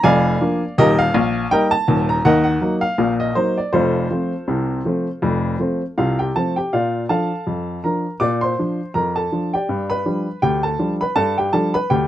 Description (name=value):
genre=ragtime piano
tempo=81 BPM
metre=2/4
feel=swing 56% on 16ths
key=Bb major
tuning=A4 = 441 Hz
part: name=clear upright piano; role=solo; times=0.0-12.1 s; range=Eb1 to D6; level=-17 LUFS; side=equal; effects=none
room=light reverb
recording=dry, close 1970s-style studio recording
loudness=-17 LUFS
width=side -12 dB against mid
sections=0.0-6.7 A section; 6.7-12.1 B section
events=none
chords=0.0 Bb; 0.8 Eb; 2.3 Ebm; 3.7 F; 6.7 Bb; 9.7 G7